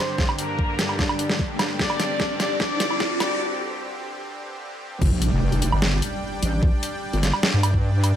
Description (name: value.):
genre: heavy wobble dubstep.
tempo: 149 BPM.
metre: 4/4.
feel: half-time.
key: G minor.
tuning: A4 = 441 Hz.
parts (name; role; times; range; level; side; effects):
rich studio violin section; melody; 0.0-3.4 s; Bb3 to D5; -28 LUFS; left 2 dB; low-pass filter, ping-pong delay.
supersaw pad; sustained chords; 0.0-8.2 s; G2 to G5; -30 LUFS; right 1 dB; sidechain pumping.
riser and impact; sound effects; 0.6-6.6 s; none; -31 LUFS; equal; none.
dubstep drum kit; drums; 0.2-8.1 s; crash cymbal, hi-hat, snare drum, woodblock; -25 LUFS; right 1 dB; overdrive.
electronic kick drum; drums; 0.2-7.8 s; none; -23 LUFS; equal; overdrive.
wobble bass; bass; 5.0-8.1 s; F1 to G2; -21 LUFS; equal; chorus, overdrive.
room: light reverb, digital ambience.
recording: high-pass filter.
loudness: -20 LUFS.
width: side -10 dB against mid.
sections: 0.0-5.0 A section; 5.0-8.2 B section.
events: build-up 0.0-5.0; drum fill 0.0-3.4; riser 0.6-3.4; break 3.4-5.0; drop 5.0-8.2; impact 5.0-6.6.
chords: 0.0 G5.